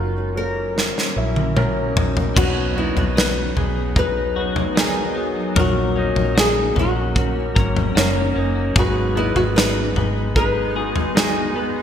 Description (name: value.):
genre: pop ballad.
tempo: 75 BPM.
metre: 4/4.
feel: straight.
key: B major.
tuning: A4 = 437 Hz.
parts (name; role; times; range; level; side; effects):
flamenco guitar; melody; 0.0-11.8 s; E4 to B4; -24 LUFS; left 1 dB; lush chorus.
warm concert grand piano; accompaniment; 0.0-11.8 s; G#2 to C#5; -25 LUFS; left 1 dB; none.
granular cloud pad; sustained chords; 0.0-11.8 s; F#3 to D#4; -28 LUFS; equal; built-in reverb.
vintage muted fingered electric bass; bass; 0.0-11.8 s; F#1 to B1; -24 LUFS; equal; none.
modern studio drum kit; drums; 0.8-11.4 s; crash cymbal, kick drum, snare drum, toms; -21 LUFS; equal; gated reverb.
clean electric guitar; arpeggios; 2.4-11.8 s; G#2 to A#4; -29 LUFS; left 6 dB; analog chorus, digital delay.
room: moderate plate reverb, RT60 2.5 s.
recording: bright 1980s-style digital production.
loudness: -17 LUFS.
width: side -9 dB against mid.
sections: 0.0-2.4 A section; 2.4-11.8 B section.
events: drum fill 0.8-2.4.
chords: 0.0 F#; 2.4 B; 5.6 F#/A#; 8.8 G#m.